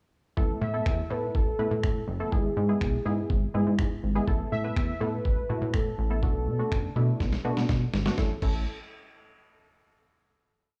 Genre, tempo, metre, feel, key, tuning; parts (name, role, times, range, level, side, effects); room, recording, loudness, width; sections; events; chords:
dance-pop; 123 BPM; 4/4; straight; A4 = 436 Hz
wavetable chord stab; accompaniment; 0.4-8.7 s; G#3 to B4; -35 LUFS; equal; sidechain pumping
plucky analog bass; bass; 0.4-8.6 s; F#1 to B2; -31 LUFS; equal; sidechain pumping
lo-fi sampler-style drum kit; drums; 0.4-8.5 s; crash cymbal, finger snaps, kick drum, snare drum; -31 LUFS; equal
warm velvety synth lead; melody; 0.6-8.6 s; G#4 to E5; -36 LUFS; equal; chorus
little or no reverb; dry, gritty hardware recording, cassette tape, studio reverb; -28 LUFS; mono
0.4-8.2 verse; 8.2-10.1 final chord
drum fill 7.2-8.2
0.4 Asus2; 2.3 E/G#; 4.3 Asus2; 6.2 Bm7; 8.2 A